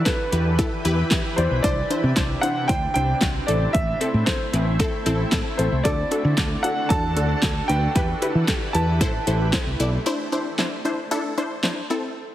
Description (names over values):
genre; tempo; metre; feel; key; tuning
dance-pop; 114 BPM; 4/4; straight; unclear; A4 = 440 Hz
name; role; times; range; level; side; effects
warm baby grand piano; melody; 0.0-9.5 s; B4 to A5; -26 LUFS; equal; digital delay
shimmering ambient pad; sustained chords; 0.0-10.1 s; C3 to B4; -30 LUFS; right 1 dB; chorus, built-in reverb, sidechain pumping
wide unison pluck; accompaniment; 0.1-12.3 s; C4 to D5; -26 LUFS; left 2 dB; sidechain pumping
pop drum kit; drums; 0.1-11.8 s; handclaps, hi-hat, kick drum, snare drum; -24 LUFS; equal; overdrive
fingered electric bass; bass; 0.3-10.0 s; A1 to E3; -22 LUFS; equal; sidechain pumping
room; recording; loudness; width
light reverb; heavily compressed radio sound, multiband compression; -20 LUFS; side -13 dB against mid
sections
0.0-10.1 A section; 10.1-12.3 B section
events
none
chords
0.0 Em; 1.6 Cadd9; 3.5 Am; 5.9 D; 8.0 Em; 9.0 Am; 10.1 Cadd9